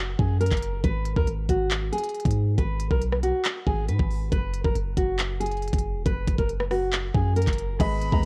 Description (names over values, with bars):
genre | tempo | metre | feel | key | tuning
hip hop, trap | 138 BPM | 4/4 | half-time | G# minor | A4 = 442 Hz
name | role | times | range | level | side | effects
long sustained 808-style bass | bass | 0.0-8.3 s | E1 to G#2 | -29 LUFS | equal | none
nylon-string guitar | melody | 0.2-8.2 s | F#4 to B5 | -31 LUFS | equal | low-pass filter
trap drum kit | drums | 0.2-8.3 s | crash cymbal, handclaps, hi-hat, kick drum, rim click | -29 LUFS | equal | overdrive
reedy concert flute | second line | 7.8-8.3 s | B5 | -34 LUFS | equal | none
dark baby grand piano | accompaniment | 7.8-8.3 s | G#3 to D#5 | -32 LUFS | equal | low-pass filter
glassy FM pad | sustained chords | 8.0-8.3 s | D#3 to B3 | -37 LUFS | equal | ensemble chorus, built-in reverb
room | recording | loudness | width
light reverb, digital ambience | worn, warbling old tape, cassette tape, warbly pitch drift | -25 LUFS | mono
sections
0.0-7.8 A section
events
none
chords
0.0 F#; 0.8 G#m; 4.3 N.C.